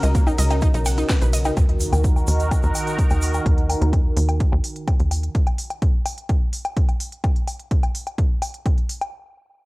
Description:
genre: melodic techno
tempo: 127 BPM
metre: 4/4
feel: straight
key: Eb minor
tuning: A4 = 439 Hz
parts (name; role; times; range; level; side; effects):
- sweeping resonant pad; sustained chords; 0.0-5.3 s; Db3 to Bb4; -26 LUFS; right 1 dB; chorus, sidechain pumping
- wide unison pluck; arpeggios; 0.0-1.6 s; Bb3 to Gb6; -27 LUFS; equal; sidechain pumping, analog delay
- tight sequencer bass; bass; 0.0-5.3 s; Cb2 to Eb2; -20 LUFS; equal; tube saturation, sidechain pumping
- techno drum kit; drums; 0.0-9.1 s; hi-hat, ride cymbal, snare drum, woodblock; -29 LUFS; left 1 dB; studio reverb, cassette tape
- tube shaker; percussion; 0.0-3.4 s; none; -35 LUFS; right 3 dB; none
- electronic kick drum; drums; 0.1-8.8 s; none; -19 LUFS; equal; studio reverb, cassette tape
- impact; sound effects; 1.6-3.5 s; none; -32 LUFS; equal; none
room: digital ambience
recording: home recording on cassette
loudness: -18 LUFS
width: side -22 dB against mid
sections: 0.0-1.6 A section; 1.6-9.1 B section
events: drop 0.0-1.6; impact 1.6-3.5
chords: 0.0 Dbsus4; 1.6 Ebm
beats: 0.15 0.62 1.09 | 1.57 2.04 2.51 2.98 | 3.46 3.93 4.40 4.87 | 5.35 5.82 6.29 6.76 | 7.24 7.71 8.18 8.65

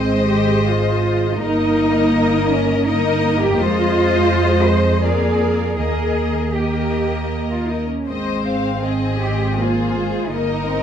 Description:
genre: classical, slow romantic movement for string orchestra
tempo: 81 BPM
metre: 3/4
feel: rubato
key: Ab major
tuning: A4 = 443 Hz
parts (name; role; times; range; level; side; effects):
- muted symphonic violin section; melody; 0.0-10.8 s; C5 to F5; -27 LUFS; left 6 dB; none
- muted symphonic violin section; second line; 0.0-10.8 s; Ab4 to C5; -24 LUFS; left 6 dB; none
- muted symphonic viola section; accompaniment; 0.0-10.8 s; Ab3 to C4; -22 LUFS; equal; none
- muted studio double bass section; bass; 0.0-10.8 s; G1 to F2; -22 LUFS; right 2 dB; none
- muted symphonic cello section; bass; 0.0-10.8 s; C4 to C5; -21 LUFS; right 1 dB; none
room: moderate scoring stage reverb, RT60 1.7 s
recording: dark, warm production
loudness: -16 LUFS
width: side -8 dB against mid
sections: 0.0-10.8 A section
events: none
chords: 0.0 Ab; 1.4 Eb/G; 3.6 Fm7; 5.0 Bb7/F; 5.8 Eb; 8.1 Ab; 10.3 Eb/G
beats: 0.67 | 1.41 2.14 2.87 | 3.59 4.31 5.04 | 5.79 6.55 7.32 | 8.09 8.85 9.59 | 10.32

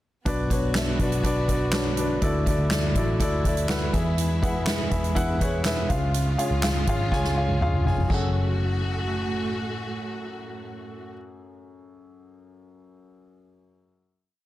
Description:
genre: piano-driven pop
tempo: 123 BPM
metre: 4/4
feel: straight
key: F# minor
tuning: A4 = 440 Hz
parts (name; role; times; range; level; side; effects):
- warm upright piano; accompaniment; 0.3-14.4 s; F#2 to G#5; -28 LUFS; left 1 dB; none
- warm symphonic string section; sustained chords; 0.3-11.1 s; A2 to F#4; -32 LUFS; right 2 dB; none
- vintage muted picked electric bass; bass; 0.3-11.1 s; E#1 to E2; -26 LUFS; equal; none
- soft-mallet drum kit; drums; 0.3-8.2 s; handclaps, hi-hat, kick drum, snare drum, splash cymbal, toms; -27 LUFS; equal; none
room: light reverb, studio reverb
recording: dense, heavily limited modern master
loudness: -22 LUFS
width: side -15 dB against mid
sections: 0.3-8.1 bridge; 8.1-12.0 final chord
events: upright piano fill 3.2-4.2; drum fill 7.1-8.1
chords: 0.3 Bm; 2.2 Dadd9; 3.9 E; 5.9 C#; 8.1 F#madd9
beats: | 0.27 0.76 1.25 1.73 | 2.22 2.71 3.20 3.69 | 4.18 4.67 5.16 5.65 | 6.14 6.63 7.12 7.61 | 8.10 8.59 9.07 9.56 | 10.05 10.54 11.03 11.52

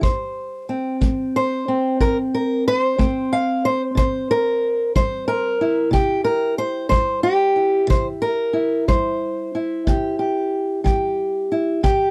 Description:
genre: acoustic country blues, solo or duo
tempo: 61 BPM (dotted quarters)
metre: 12/8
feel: straight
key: C major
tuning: A4 = 440 Hz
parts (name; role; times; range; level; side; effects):
- fingerpicked old ladder-braced acoustic guitar; melody; 0.0-12.1 s; C3 to F5; -21 LUFS; equal; none
- kick drum; drums; 0.0-12.0 s; none; -22 LUFS; equal; none
room: little or no reverb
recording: none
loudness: -20 LUFS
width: mono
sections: 0.0-12.1 A section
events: none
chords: 0.0 F; 4.0 C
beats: | 0.03 1.02 2.00 2.98 | 3.97 4.95 5.93 6.92 | 7.90 8.89 9.87 10.86 | 11.84

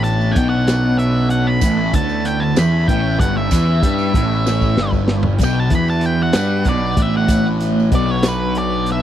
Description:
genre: psychedelic rock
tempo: 64 BPM (dotted quarters)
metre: 6/8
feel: straight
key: B minor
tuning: A4 = 442 Hz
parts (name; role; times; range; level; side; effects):
- octave-fuzz lead guitar; melody; 0.0-9.0 s; B4 to B5; -22 LUFS; equal; distortion, tape echo
- combo organ; sustained chords; 0.0-9.0 s; B3 to B4; -30 LUFS; right 7 dB; none
- fuzz guitar; riff; 0.0-9.0 s; G2 to G3; -18 LUFS; equal; distortion, phaser
- fuzz picked electric bass; bass; 0.0-9.0 s; G1 to G2; -20 LUFS; equal; overdrive
- crunchy breakbeat drum kit; drums; 0.0-9.0 s; hi-hat, kick drum, snare drum, toms; -18 LUFS; equal; none
- tambourine; percussion; 0.1-8.4 s; none; -35 LUFS; right 18 dB; none
room: little or no reverb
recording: dry, close 1970s-style studio recording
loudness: -14 LUFS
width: side -11 dB against mid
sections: 0.0-9.0 A section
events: lead electric guitar solo 0.0-9.0; drum fill 4.5-5.4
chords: 0.0 Bmadd9; 1.6 Aadd9; 5.4 Bm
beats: 0.69 | 1.64 2.58 | 3.52 4.47 | 5.41 6.36 | 7.30 8.25

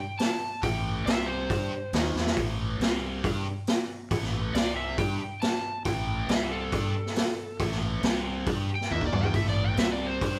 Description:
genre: blues rock power trio and southern rock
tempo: 138 BPM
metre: 4/4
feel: straight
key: A minor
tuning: A4 = 440 Hz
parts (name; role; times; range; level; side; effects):
- overdriven slide guitar; melody; 0.0-10.4 s; A4 to A5; -36 LUFS; equal; none
- raw garage drum kit; drums; 0.2-10.3 s; hi-hat, kick drum, snare drum, toms; -31 LUFS; equal; none
- biting overdriven guitar; riff; 0.6-10.4 s; A2 to G4; -37 LUFS; equal; phaser
- fuzz fingered electric bass; bass; 0.6-10.4 s; A1 to G2; -35 LUFS; equal; overdrive
room: light reverb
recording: band playing live in one room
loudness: -28 LUFS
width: mono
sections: 0.0-10.4 A section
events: drum fill 2.2, 8.9-9.3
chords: 0.0 A5; 1.1 C5; 1.5 Am; 2.8 C5; 3.2 A5; 4.5 C5; 5.0 A5; 6.3 C5; 6.7 A5; 8.0 C5; 8.5 A5; 9.8 C5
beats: 0.20 | 0.63 1.06 1.50 1.94 | 2.37 2.81 3.24 3.68 | 4.11 4.55 4.99 5.42 | 5.86 6.29 6.73 7.17 | 7.60 8.04 8.47 8.91 | 9.35 9.78 10.22

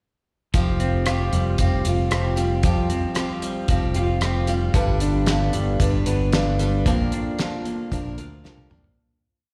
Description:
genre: folk rock and heartland rock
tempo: 114 BPM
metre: 4/4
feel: straight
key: unclear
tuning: A4 = 440 Hz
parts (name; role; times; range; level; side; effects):
- picked steel-string acoustic guitar; accompaniment; 0.5-9.0 s; G2 to B4; -29 LUFS; equal; slapback echo
- electric guitar through a small old amp; riff; 0.5-9.0 s; F3 to F4; -30 LUFS; equal; warbly pitch drift, slapback echo
- fingered electric bass; bass; 0.5-9.0 s; F1 to F2; -25 LUFS; equal; none
- cloth-damped thuddy drum kit; drums; 0.5-9.0 s; hi-hat, kick drum, rim click, snare drum, toms; -25 LUFS; equal; none
room: light reverb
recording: live gig heard through the venue's PA, recital hall reverb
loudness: -22 LUFS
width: mono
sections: 0.5-9.0 verse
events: fade-out 6.9-9.0; drum fill 8.4-9.0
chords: 0.5 Fsus2; 4.8 G; 6.9 Bbadd9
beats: | 0.55 1.07 1.59 2.12 | 2.64 3.17 3.70 4.22 | 4.75 5.28 5.81 6.33 | 6.86 7.39 7.92 8.45

